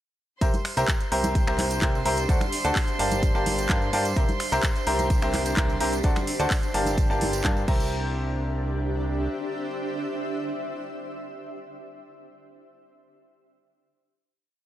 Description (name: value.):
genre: piano house.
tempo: 128 BPM.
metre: 4/4.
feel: straight.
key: C mixolydian.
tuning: A4 = 440 Hz.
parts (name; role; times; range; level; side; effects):
warm studio violin section; sustained chords; 0.4-7.7 s; C5 to C6; -34 LUFS; right 2 dB; sidechain pumping.
clear grand piano; riff; 0.4-11.5 s; F#4 to Bb5; -28 LUFS; equal; sidechain pumping, tape echo.
fat analog bass; bass; 0.4-9.3 s; G1 to G2; -29 LUFS; equal; sidechain pumping.
electronic kick drum; drums; 0.4-7.8 s; none; -24 LUFS; equal; none.
house drum kit; drums; 0.4-7.8 s; crash cymbal, finger snaps, handclaps, hi-hat; -31 LUFS; equal; none.
tambourine and congas; percussion; 0.4-7.9 s; none; -34 LUFS; right 2 dB; none.
granular cloud pad; texture; 1.6-12.0 s; D4 to E5; -33 LUFS; equal; built-in reverb, sidechain pumping.
room: digital ambience.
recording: dry, gritty hardware recording.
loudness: -22 LUFS.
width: side -13 dB against mid.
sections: 0.4-7.9 drop; 7.9-11.7 final chord.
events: drop 0.4-7.9.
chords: 0.4 C7; 2.3 D7; 3.2 Gm9; 4.2 C7; 6.0 D7; 7.0 Gm9; 7.7 C7.